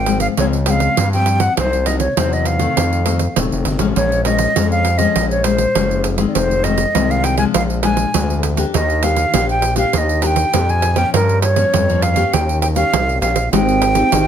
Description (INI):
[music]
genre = samba and choro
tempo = 100 BPM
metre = 4/4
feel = straight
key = unclear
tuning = A4 = 440 Hz
[part]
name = wooden flute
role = melody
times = 0.0-14.3 s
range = Bb4 to Bb5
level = -18 LUFS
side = right 1 dB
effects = none
[part]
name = nylon-string guitar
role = accompaniment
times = 0.0-14.3 s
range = F2 to G4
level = -20 LUFS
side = left 8 dB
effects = none
[part]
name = gritty driven synth bass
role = bass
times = 0.0-14.3 s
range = Eb1 to G2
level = -19 LUFS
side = equal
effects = none
[part]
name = pandeiro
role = percussion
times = 0.1-14.3 s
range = none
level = -21 LUFS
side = right 9 dB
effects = none
[part]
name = mellow trombone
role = second line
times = 13.5-14.3 s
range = C4 to Eb4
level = -20 LUFS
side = right 7 dB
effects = none
[sound]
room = moderate studio reverb, RT60 0.8 s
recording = none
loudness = -14 LUFS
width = side -9 dB against mid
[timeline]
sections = 0.0-13.5 A section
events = none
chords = 0.0 Dbmaj7; 1.6 Cm7b5; 2.8 F7; 4.0 Bbm7; 6.4 Fm7; 7.5 Bb7; 8.7 Ebmaj7; 11.1 Gm7b5; 12.3 Eb7; 13.5 Abmaj7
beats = 0.38 0.98 | 1.57 2.17 2.77 3.37 | 3.96 4.56 5.16 5.76 | 6.36 6.95 7.55 8.15 | 8.75 9.34 9.94 10.54 | 11.14 11.73 12.33 12.93 | 13.53 14.13